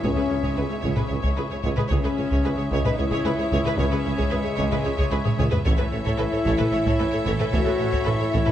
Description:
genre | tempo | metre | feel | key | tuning
cinematic, epic orchestral film score | 224 BPM (eighths) | 7/8 | straight | C# minor | A4 = 440 Hz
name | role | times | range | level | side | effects
warm symphonic violin section | melody | 0.0-8.5 s | E5 | -36 LUFS | left 4 dB | none
rich symphonic violin section | second line | 0.0-8.5 s | B4 to C#5 | -32 LUFS | left 2 dB | none
rich symphonic viola section | accompaniment | 0.0-8.5 s | G#4 to A4 | -33 LUFS | right 2 dB | none
mellow French horn section | sustained chords | 0.0-8.5 s | G#3 to F#4 | -27 LUFS | left 3 dB | none
warm woodwind section | sustained chords | 0.0-8.5 s | C#4 to C#5 | -33 LUFS | equal | none
rich symphonic double bass section | bass | 0.0-8.4 s | A1 to C#2 | -30 LUFS | right 2 dB | none
warm symphonic cello section | bass | 0.0-8.5 s | C#2 to A2 | -30 LUFS | right 1 dB | none
taiko ensemble | drums | 0.0-8.5 s | none | -26 LUFS | equal | none
warm tuba | bass | 0.1-8.4 s | A1 to C#2 | -31 LUFS | right 3 dB | none
room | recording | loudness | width
moderate recital hall reverb, RT60 1.4 s | dark, warm production | -20 LUFS | side -11 dB against mid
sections
0.0-8.5 A section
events
drum fill 5.3-5.7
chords
0.0 C#m; 5.7 A

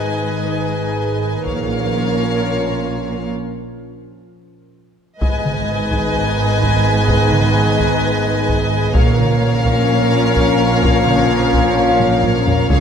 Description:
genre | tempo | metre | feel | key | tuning
cinematic, hybrid orchestral and electronic film score | 128 BPM | 4/4 | straight | Bb phrygian | A4 = 445 Hz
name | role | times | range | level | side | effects
rich symphonic violin section | melody | 0.0-12.8 s | F5 to Ab5 | -23 LUFS | left 3 dB | none
warm studio violin section | second line | 0.0-12.8 s | Db5 to Eb5 | -24 LUFS | left 5 dB | none
dark symphonic viola section | accompaniment | 0.0-12.8 s | Ab4 to Cb5 | -25 LUFS | right 1 dB | none
warbly tape-like pad | sustained chords | 0.0-12.8 s | Eb3 to Cb5 | -23 LUFS | left 2 dB | chorus, built-in reverb
dark symphonic double bass section | bass | 0.0-12.8 s | Ab1 to Db2 | -22 LUFS | right 3 dB | none
warm symphonic cello section | bass | 0.0-12.8 s | Ab2 to Db3 | -21 LUFS | right 3 dB | none
taiko ensemble | drums | 1.5-2.4, 5.2-12.8 s | none | -20 LUFS | equal | none
clear trombone section | sustained chords | 5.2-12.8 s | Eb3 to Bb3 | -24 LUFS | right 2 dB | none
mellow French horn section | sustained chords | 5.2-12.8 s | Cb4 to Ab4 | -23 LUFS | left 4 dB | none
room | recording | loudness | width
moderate scoring stage reverb, RT60 2.0 s | none | -14 LUFS | side -7 dB against mid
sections
0.0-5.2 A section; 5.2-12.8 B section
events
break 3.3-5.2; drum fill 12.0-12.7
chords
0.0 Abm; 1.5 Bbm; 5.2 Abm; 9.0 Bbm

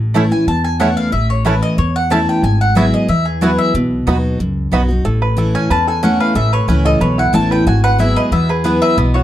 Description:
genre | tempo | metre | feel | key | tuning
bluegrass | 184 BPM | 4/4 | straight | unclear | A4 = 440 Hz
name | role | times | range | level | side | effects
picked steel-string acoustic guitar | accompaniment | 0.0-9.2 s | E2 to G#4 | -16 LUFS | equal | none
upright bass | bass | 0.0-9.2 s | G#1 to E2 | -17 LUFS | equal | none
mandolin | stabs | 0.1-4.8 s | A3 to B5 | -23 LUFS | right 5 dB | none
bluegrass banjo | arpeggios | 0.2-9.2 s | B3 to B4 | -21 LUFS | right 3 dB | none
mandolin | melody | 0.3-9.2 s | G#4 to A5 | -18 LUFS | left 2 dB | none
room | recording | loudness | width
moderate small room reverb, RT60 0.5 s | dark, warm production | -12 LUFS | side -12 dB against mid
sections
0.0-5.0 A section; 5.0-9.2 A section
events
none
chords
0.0 A; 2.4 Eadd9/G#; 3.7 B; 5.0 A; 7.7 Eadd9/G#

